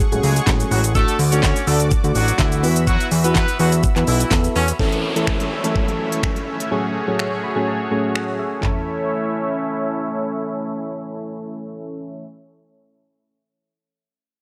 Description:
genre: dance-pop.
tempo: 125 BPM.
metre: 4/4.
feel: straight.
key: A major.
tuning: A4 = 440 Hz.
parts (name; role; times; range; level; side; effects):
soft supersaw; sustained chords; 0.0-12.3 s; A3 to E6; -28 LUFS; equal; sidechain pumping, low-pass filter.
pop drum kit; drums; 0.0-8.8 s; finger snaps, handclaps, hi-hat, kick drum, shaker, snare drum, toms; -22 LUFS; equal; none.
soft electric-piano-like synth keys; accompaniment; 0.1-12.3 s; A2 to B5; -26 LUFS; equal; chorus, sidechain pumping, low-pass filter.
fat analog bass; bass; 0.1-4.7 s; A1 to E2; -21 LUFS; equal; sidechain pumping.
warm horn section; melody; 0.2-4.7 s; E3 to C#5; -27 LUFS; equal; sidechain pumping.
downlifter; sound effects; 4.8-8.6 s; none; -31 LUFS; equal; none.
room: light reverb, digital ambience.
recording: dry, gritty hardware recording.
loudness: -19 LUFS.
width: mono.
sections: 0.0-4.8 A section; 4.8-8.6 B section; 8.6-12.5 C section.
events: drop 0.0-4.8; synth keys fill 7.2-8.6.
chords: 0.0 F#madd9/A; 1.0 D; 2.6 Esus2; 4.8 A; 6.7 F#madd9/A; 8.6 A.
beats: 0.47 | 0.95 1.43 1.91 2.39 | 2.87 3.35 3.83 4.31 | 4.79 5.27 5.75 6.23 | 6.71 7.19 7.67 8.15 | 8.63 9.11 9.59 10.07 | 10.55 11.03 11.51 11.99.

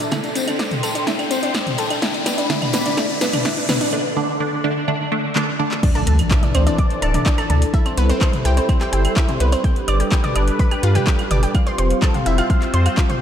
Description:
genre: melodic techno.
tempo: 126 BPM.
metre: 4/4.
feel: straight.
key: D dorian.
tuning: A4 = 440 Hz.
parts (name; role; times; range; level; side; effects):
sweeping resonant pad; sustained chords; 0.0-13.2 s; E3 to C6; -25 LUFS; equal; chorus, sidechain pumping.
analog pluck; arpeggios; 0.0-13.1 s; B3 to G6; -23 LUFS; equal; chorus, sidechain pumping, diffuse ambient delay.
filtered dub chord stab; stabs; 0.0-5.8 s; D3 to D4; -23 LUFS; right 2 dB; phaser, sidechain pumping, diffuse ambient delay.
round analog bass; bass; 0.0-12.9 s; D1 to G2; -17 LUFS; equal; tube saturation, sidechain pumping, high-pass filter.
deep house drum kit; drums; 0.0-13.2 s; claves, crash cymbal, handclaps, hi-hat, snare drum, toms; -24 LUFS; equal; overdrive.
tambourine; percussion; 0.0-3.9 s; none; -32 LUFS; left 2 dB; none.
riser and impact; sound effects; 0.0-7.7 s; none; -26 LUFS; equal; none.
electronic kick drum; drums; 0.1-13.1 s; none; -18 LUFS; equal; overdrive, high-pass filter on kick, high-pass filter on room.
room: moderate lush hall reverb, RT60 1.9 s.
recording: dreamy mix soaked in reverb.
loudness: -16 LUFS.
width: side -9 dB against mid.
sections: 0.0-5.8 A section; 5.8-13.2 B section.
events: build-up 0.0-5.8; drum fill 0.0-3.9, 5.4-5.8; riser 0.0-3.9; filter sweep on synth stab 0.0-5.8; drop 5.8-13.2; impact 5.8-7.7.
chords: 0.1 C6; 2.0 Gadd9; 3.9 D5; 5.8 Dsus2; 7.7 C6; 9.6 Gadd9; 11.5 Fsus2.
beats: | 0.12 0.59 1.07 1.55 | 2.02 2.50 2.98 3.45 | 3.93 4.40 4.88 5.36 | 5.83 6.31 6.78 7.26 | 7.74 8.21 8.69 9.16 | 9.64 10.12 10.59 11.07 | 11.55 12.02 12.50 12.97.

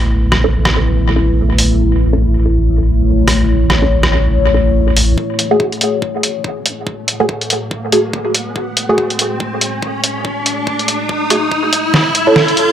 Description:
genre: deep dubstep.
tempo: 142 BPM.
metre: 4/4.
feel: swing 59% on 16ths, half-time.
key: F# minor.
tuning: A4 = 443 Hz.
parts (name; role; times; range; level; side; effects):
deep dark ambient pad; sustained chords; 0.0-12.7 s; A3 to C#5; -19 LUFS; left 2 dB; chorus, built-in reverb.
filtered dub chord stab; stabs; 0.0-12.7 s; A3 to A4; -17 LUFS; right 1 dB; phaser, dub echo.
deep soft wobble bass; bass; 0.0-12.4 s; E1 to F#2; -14 LUFS; equal; chorus, high-pass filter.
trip hop sampler-style drum kit; drums; 0.3-12.7 s; hi-hat, rim click, snare drum; -16 LUFS; equal; analog delay.
electronic kick drum; drums; 5.2-12.5 s; none; -23 LUFS; equal; high-pass filter on kick, high-pass filter on room.
riser; sound effects; 6.8-12.7 s; none; -18 LUFS; equal; none.
room: moderate spring reverb, RT60 1.4 s.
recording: echo-heavy mix.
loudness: -12 LUFS.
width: side -10 dB against mid.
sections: 0.0-5.2 A section; 5.2-12.7 B section.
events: filter sweep on ambient pad 0.0-5.2, 5.2-12.7; build-up 5.2-12.7; riser 6.8-12.7; drum fill 11.9-12.7.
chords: 0.0 A; 5.2 F#madd9; 11.9 A.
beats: | 0.11 0.53 0.95 1.38 | 1.80 2.22 2.64 3.06 | 3.49 3.91 4.33 4.75 | 5.18 5.60 6.02 6.45 | 6.87 7.29 7.71 8.13 | 8.56 8.98 9.40 9.82 | 10.25 10.67 11.09 11.52 | 11.94 12.36.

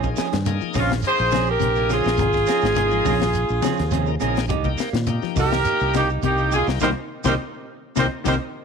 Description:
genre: afrobeat.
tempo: 104 BPM.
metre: 4/4.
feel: straight.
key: Bb dorian.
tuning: A4 = 440 Hz.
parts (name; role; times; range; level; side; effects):
bright tonewheel organ; accompaniment; 0.0-8.4 s; Bb3 to Bb4; -32 LUFS; left 12 dB; overdrive, slow rotary speaker.
clean electric guitar; arpeggios; 0.0-8.3 s; Bb2 to F3; -31 LUFS; left 11 dB; none.
semi-hollow electric guitar; stabs; 0.0-8.4 s; F3 to Ab4; -28 LUFS; right 13 dB; none.
fingered electric bass; bass; 0.0-8.4 s; Ab1 to Bb2; -24 LUFS; equal; none.
tight funk drum kit; drums; 0.0-8.4 s; hi-hat, kick drum, snare drum; -29 LUFS; left 6 dB; none.
shekere; percussion; 0.0-8.4 s; none; -32 LUFS; right 6 dB; none.
congas; percussion; 0.5-8.4 s; none; -30 LUFS; left 10 dB; none.
clear horn section; melody; 0.8-8.3 s; F4 to C5; -22 LUFS; left 1 dB; none.
raspy alto saxophone; second line; 0.8-8.3 s; Db4 to Ab4; -27 LUFS; right 13 dB; none.
room: light reverb, studio reverb.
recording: 1960s-style stereo with parts hard left and right.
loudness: -18 LUFS.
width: side -6 dB against mid.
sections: 0.0-8.6 A section.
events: band accent 6.8-8.6.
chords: 0.0 Bbm9; 4.5 Cm7.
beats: 0.46 1.04 1.61 | 2.19 2.77 3.34 3.92 | 4.50 5.07 5.65 6.23 | 6.81 7.39 7.97.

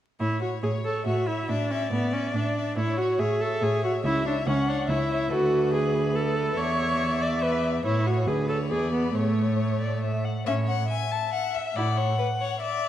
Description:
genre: quick classical-period movement for string quartet.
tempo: 140 BPM.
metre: 3/4.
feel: straight.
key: A major.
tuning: A4 = 440 Hz.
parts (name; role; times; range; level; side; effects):
clear violin; melody; 0.2-12.9 s; B4 to A5; -32 LUFS; left 8 dB; none.
rich viola; accompaniment; 0.2-12.0 s; A3 to D5; -26 LUFS; equal; none.
rich cello; bass; 0.2-12.1 s; C#2 to A2; -28 LUFS; right 2 dB; none.
rich violin; second line; 0.6-12.9 s; A4 to F#5; -32 LUFS; left 2 dB; none.
room: moderate concert hall reverb, RT60 1.9 s.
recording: dark, warm production, vinyl crackle.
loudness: -23 LUFS.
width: side -11 dB against mid.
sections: 0.2-10.5 A section; 10.5-12.9 A section.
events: none.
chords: 0.2 A; 1.5 Aadd11; 2.8 A; 4.0 C#madd11; 5.3 Bm7/D; 6.6 Bmadd11/E; 7.9 A; 8.3 Bm/D; 8.7 E7; 9.2 A; 11.8 A6.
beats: | 0.20 0.63 1.06 | 1.49 1.92 2.34 | 2.76 3.19 3.61 | 4.04 4.47 4.89 | 5.31 5.73 6.16 | 6.58 7.00 7.43 | 7.86 8.28 8.71 | 9.15 9.59 10.03 | 10.46 10.89 11.32 | 11.75 12.19 12.61.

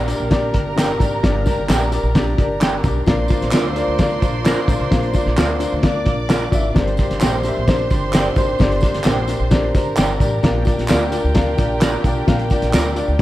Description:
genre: uptempo 1960s-style soul.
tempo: 130 BPM.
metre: 4/4.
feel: straight.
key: G minor.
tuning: A4 = 439 Hz.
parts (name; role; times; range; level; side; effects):
mellow horn section; second line; 0.0-13.2 s; Bb3 to D5; -28 LUFS; right 2 dB; none.
rich symphonic violin section; second line; 0.0-13.2 s; G4 to D6; -28 LUFS; right 1 dB; none.
warm upright piano; accompaniment; 0.0-13.2 s; G2 to F5; -22 LUFS; left 3 dB; none.
upright bass; bass; 0.0-13.2 s; G1 to D2; -23 LUFS; equal; none.
cloth-damped thuddy drum kit; drums; 0.1-13.2 s; hi-hat, kick drum, snare drum; -18 LUFS; equal; none.
tambourine and handclaps; percussion; 0.1-13.1 s; none; -28 LUFS; right 1 dB; none.
semi-hollow electric guitar; stabs; 0.8-12.9 s; F4 to G5; -26 LUFS; right 3 dB; ensemble chorus.
room: light reverb, small room ambience.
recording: dark, warm production.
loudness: -15 LUFS.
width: side -15 dB against mid.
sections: 0.0-13.2 A section.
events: none.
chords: 0.0 Gm; 3.1 Bb; 6.8 Gm; 10.4 Bb.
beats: 0.32 0.78 | 1.23 1.69 2.15 2.62 | 3.08 3.54 4.00 4.46 | 4.92 5.38 5.84 6.30 | 6.76 7.22 7.68 8.14 | 8.60 9.06 9.52 9.98 | 10.44 10.90 11.36 11.82 | 12.28 12.74 13.20.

